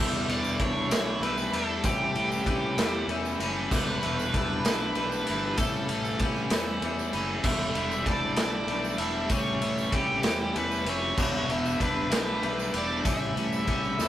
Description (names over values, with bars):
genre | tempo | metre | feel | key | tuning
indie rock | 64 BPM (dotted quarters) | 6/8 | straight | E dorian | A4 = 441 Hz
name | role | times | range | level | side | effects
overdriven electric guitar | melody | 0.0-14.1 s | G4 to E5 | -31 LUFS | right 1 dB | none
scooped high-gain guitar | riff | 0.0-14.1 s | E2 to E4 | -38 LUFS | right 4 dB | distortion
twelve-string electric guitar | riff | 0.0-14.1 s | E2 to E4 | -31 LUFS | left 2 dB | none
fuzz fingered electric bass | bass | 0.0-14.1 s | E1 to E2 | -35 LUFS | equal | overdrive
raw garage drum kit | drums | 0.3-14.1 s | crash cymbal, kick drum, ride cymbal, snare drum | -29 LUFS | equal | none
tambourine | percussion | 0.4-14.1 s | none | -45 LUFS | right 5 dB | none
room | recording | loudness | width
moderate studio reverb, RT60 0.5 s | rough rehearsal-room recording, warm saturation | -25 LUFS | side -12 dB against mid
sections
0.0-14.1 A section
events
none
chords
0.0 Em7; 1.9 A7; 3.7 Em7; 5.6 A7; 7.5 Em7; 9.3 A7; 11.2 Em7; 13.1 A7